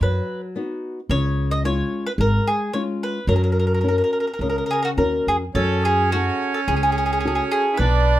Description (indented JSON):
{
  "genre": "italian folk, Italian serenade",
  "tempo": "108 BPM",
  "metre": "4/4",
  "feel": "rubato",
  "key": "F# major",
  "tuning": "A4 = 440 Hz",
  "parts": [
    { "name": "mandolin", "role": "melody", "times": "0.0-8.2 s", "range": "F#4 to D#5", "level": "-23 LUFS", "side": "right 1 dB", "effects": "none" },
    { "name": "flamenco guitar", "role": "accompaniment", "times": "0.0-8.2 s", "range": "C#3 to A#4", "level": "-25 LUFS", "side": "left 3 dB", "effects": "none" },
    { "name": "upright bass", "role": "bass", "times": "0.0-8.2 s", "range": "G#1 to F#2", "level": "-21 LUFS", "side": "equal", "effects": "none" },
    { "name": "accordion", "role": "second line", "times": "5.5-8.2 s", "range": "C#4 to E4", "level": "-23 LUFS", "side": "right 5 dB", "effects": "none" }
  ],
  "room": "light reverb",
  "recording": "minimal, uncompressed stereo recording",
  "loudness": "-19 LUFS",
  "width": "side -14 dB against mid",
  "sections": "0.0-5.5 A section; 5.5-8.2 B section",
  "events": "none",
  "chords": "0.0 B; 1.1 C#; 3.3 F#; 5.5 F#madd9"
}